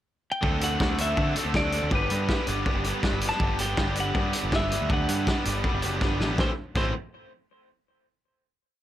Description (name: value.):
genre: indie rock.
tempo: 161 BPM.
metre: 4/4.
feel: straight.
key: A dorian.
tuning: A4 = 440 Hz.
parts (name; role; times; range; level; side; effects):
clean electric guitar; melody; 0.3-6.9 s; B4 to A5; -30 LUFS; equal; none.
bright tonewheel organ; sustained chords; 0.4-6.6 s; A3 to D6; -40 LUFS; equal; none.
crunchy overdriven guitar; riff; 0.4-6.9 s; A2 to B4; -32 LUFS; left 7 dB; none.
fuzz guitar; riff; 0.4-6.9 s; G2 to G4; -32 LUFS; right 9 dB; distortion, lush chorus.
growling picked electric bass; bass; 0.4-6.9 s; F#1 to D3; -30 LUFS; equal; overdrive.
loose indie drum kit; drums; 0.4-6.8 s; crash cymbal, hi-hat, kick drum, snare drum; -27 LUFS; equal; none.
room: little or no reverb.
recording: none.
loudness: -23 LUFS.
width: side -12 dB against mid.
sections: 0.0-0.4 pickup bar; 0.4-6.4 pre-chorus; 6.4-7.9 final chord.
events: drum fill 6.0-6.4.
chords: 0.4 D7; 1.9 G; 6.4 Am.